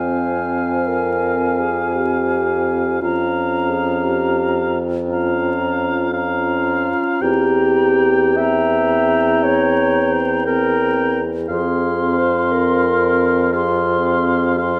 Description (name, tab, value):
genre	classical, slow romantic movement for wind quintet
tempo	49-60 BPM (dotted quarters)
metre	12/8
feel	rubato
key	F minor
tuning	A4 = 439 Hz
part	hollow concert flute	melody	0.0-14.8 s	Ab5 to C6	-27 LUFS	equal	none
part	clear oboe	second line	0.0-14.8 s	F5 to G5	-26 LUFS	equal	none
part	dark clarinet	accompaniment	0.0-14.8 s	F4 to E5	-23 LUFS	equal	none
part	mellow French horn	accompaniment	0.0-14.8 s	C4 to Db4	-27 LUFS	equal	none
part	mellow bassoon	bass	0.0-14.8 s	E2 to F2	-22 LUFS	equal	none
room	wet recital hall reverb, RT60 1.4 s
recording	dark, warm production, vinyl crackle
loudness	-18 LUFS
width	mono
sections	0.0-14.8 A section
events	none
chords	0.0 Fm; 3.0 Bbm/F; 7.2 C7/E; 11.5 Fm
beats	0.88 1.96 | 3.02 4.05 5.07 6.13 | 7.20 8.37 9.44 10.47 | 11.49 12.52 13.53 14.58